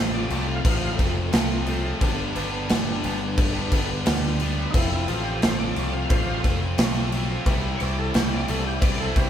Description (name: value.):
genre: classic rock.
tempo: 88 BPM.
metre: 4/4.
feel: straight.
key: unclear.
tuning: A4 = 442 Hz.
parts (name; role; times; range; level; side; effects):
overdriven tonewheel organ; melody; 0.0-9.3 s; D#4 to F5; -32 LUFS; equal; slow rotary speaker, chorus vibrato.
string machine, full ensemble; sustained chords; 0.0-9.3 s; F3 to C5; -36 LUFS; equal; phaser, ensemble chorus.
cranked stack guitar; riff; 0.0-9.3 s; F2 to F4; -30 LUFS; equal; overdrive.
crunchy overdriven guitar; riff; 0.0-9.3 s; F2 to G4; -32 LUFS; equal; none.
growling picked electric bass; bass; 0.0-9.3 s; F1 to D2; -28 LUFS; equal; overdrive.
big rock drum kit; drums; 0.3-9.3 s; crash cymbal, kick drum, snare drum; -24 LUFS; equal; none.
cowbell; percussion; 0.7-9.3 s; none; -38 LUFS; left 2 dB; none.
room: moderate studio reverb, RT60 0.7 s.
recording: band playing live in one room.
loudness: -21 LUFS.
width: side -10 dB against mid.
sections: 0.0-9.3 A section.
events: tonewheel organ solo 0.0-9.3.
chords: 0.0 F; 2.0 G; 4.8 F; 7.5 C.